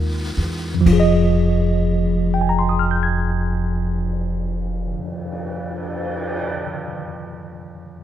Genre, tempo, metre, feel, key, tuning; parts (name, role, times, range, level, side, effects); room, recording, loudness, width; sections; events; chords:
jazz ballad; 41 BPM; 4/4; swing 68% on 8ths; F minor; A4 = 439 Hz
tine electric piano; accompaniment; 0.0-8.0 s; F2 to Ab6; -20 LUFS; equal; medium stereo tremolo
upright bass; bass; 0.0-4.9 s; F1 to E2; -22 LUFS; equal
jazz brush drum kit; drums; 0.9-6.4 s; cymbal swell, kick drum, ride cymbal; -29 LUFS; equal
little or no reverb; close, detailed microphones; -18 LUFS; side -11 dB against mid
0.9-6.7 A section
0.0 Fm9